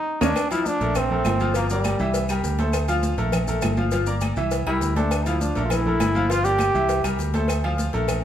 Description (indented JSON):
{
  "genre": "latin, salsa",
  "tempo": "202 BPM",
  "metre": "4/4",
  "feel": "straight",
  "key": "D minor",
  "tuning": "A4 = 440 Hz",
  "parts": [
    { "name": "bright trombone", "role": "melody", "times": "0.0-2.3, 4.7-7.0 s", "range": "G3 to G4", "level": "-24 LUFS", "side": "right 1 dB", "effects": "none" },
    { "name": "bright grand piano", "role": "accompaniment", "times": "0.2-8.2 s", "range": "E3 to F5", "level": "-26 LUFS", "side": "left 1 dB", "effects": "none" },
    { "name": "fingered electric bass", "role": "bass", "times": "0.2-8.2 s", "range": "G1 to Eb2", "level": "-25 LUFS", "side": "equal", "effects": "none" },
    { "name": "bongos and cowbell", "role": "percussion", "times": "0.2-8.2 s", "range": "none", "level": "-32 LUFS", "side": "left 4 dB", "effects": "none" },
    { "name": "claves", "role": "percussion", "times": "0.2-8.2 s", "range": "none", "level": "-37 LUFS", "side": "left 5 dB", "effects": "none" },
    { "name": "congas", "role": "percussion", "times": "0.2-8.2 s", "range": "none", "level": "-30 LUFS", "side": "equal", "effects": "none" },
    { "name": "maracas", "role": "percussion", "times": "0.2-8.2 s", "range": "none", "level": "-38 LUFS", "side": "left 5 dB", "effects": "none" },
    { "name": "timbales and agogo bells", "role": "percussion", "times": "0.2-8.2 s", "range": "none", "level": "-32 LUFS", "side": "right 4 dB", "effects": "none" }
  ],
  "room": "moderate large studio reverb, RT60 1.1 s",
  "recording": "band playing live in one room",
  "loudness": "-20 LUFS",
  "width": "side -10 dB against mid",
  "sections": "0.4-8.2 A section",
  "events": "drum fill 0.0-0.4; band accent 0.0-0.4",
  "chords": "0.4 Dm; 1.0 Bb5; 1.5 Gm7; 2.1 C7; 2.7 Dm7; 3.3 Bb5; 3.9 Gm7; 4.5 C7; 5.1 Dm7; 5.7 Bb5; 6.3 Gm7; 6.9 C7; 7.5 Dm7"
}